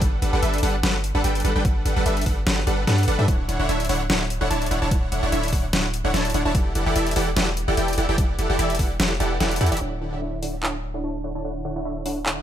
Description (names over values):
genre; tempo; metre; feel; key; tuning
future bass; 147 BPM; 4/4; swing 54% on 16ths, half-time; D major; A4 = 440 Hz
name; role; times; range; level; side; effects
supersaw stab; riff; 0.0-12.4 s; D3 to A5; -24 LUFS; equal; sidechain pumping, low-pass filter, digital delay
long sustained 808-style bass; bass; 0.0-12.4 s; D1 to G2; -24 LUFS; equal; sidechain pumping
dubstep drum kit; drums; 0.0-12.3 s; handclaps, hi-hat, snare drum; -26 LUFS; left 1 dB; overdrive
electronic kick drum; drums; 0.0-8.9 s; none; -22 LUFS; equal; overdrive
room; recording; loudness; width
little or no reverb; none; -20 LUFS; side -10 dB against mid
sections
0.0-9.8 A section; 9.8-12.4 B section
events
drop 0.0-9.8; drum fill 9.6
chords
0.0 Gmaj7; 3.3 Dmaj9; 6.5 Em11; 9.8 Dmaj9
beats
| 0.02 0.43 0.83 1.24 | 1.65 2.06 2.47 2.88 | 3.28 3.69 4.10 4.51 | 4.92 5.32 5.73 6.14 | 6.55 6.96 7.37 7.77 | 8.18 8.59 9.00 9.40 | 9.81 10.22 10.63 11.04 | 11.45 11.85 12.26